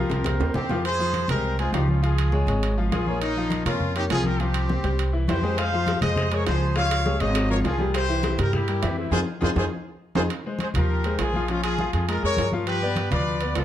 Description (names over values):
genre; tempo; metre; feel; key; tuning
latin, salsa; 203 BPM; 4/4; straight; F minor; A4 = 440 Hz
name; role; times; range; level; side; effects
clear trumpet section; melody; 0.0-13.6 s; Bb3 to F5; -27 LUFS; equal; none
bright concert grand piano; accompaniment; 0.0-13.6 s; E3 to F5; -28 LUFS; left 4 dB; none
upright bass; bass; 0.0-13.6 s; Ab1 to G2; -25 LUFS; right 1 dB; none
bongos; percussion; 0.1-0.8, 5.6-10.2 s; none; -34 LUFS; left 4 dB; none
timbales; percussion; 0.1-13.6 s; none; -33 LUFS; right 7 dB; none
congas; percussion; 0.2-13.6 s; none; -31 LUFS; left 1 dB; none
room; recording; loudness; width
moderate large studio reverb, RT60 0.9 s; dark, warm production; -21 LUFS; side -11 dB against mid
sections
0.8-10.3 A section; 10.3-13.6 B section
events
drum fill 0.0-0.8, 9.7-10.3; band accent 9.1-10.3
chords
0.0 C7sus4; 0.8 Fm; 2.0 Db; 3.2 Bbm; 4.4 Csus4; 5.0 C; 5.6 Fm7; 6.8 Dbadd9; 7.9 C7; 9.1 Fm7; 10.3 Ab69; 11.5 Bbm7; 12.7 G7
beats
0.26 0.55 | 0.85 1.14 1.44 1.73 | 2.03 2.33 2.62 2.92 | 3.21 3.51 3.81 4.10 | 4.40 4.69 4.99 5.28 | 5.58 5.87 6.17 6.46 | 6.76 7.05 7.35 7.64 | 7.94 8.23 8.53 8.82 | 9.12 9.42 9.71 10.01 | 10.30 10.60 10.89 11.19 | 11.48 11.78 12.08 12.37 | 12.67 12.96 13.26 13.56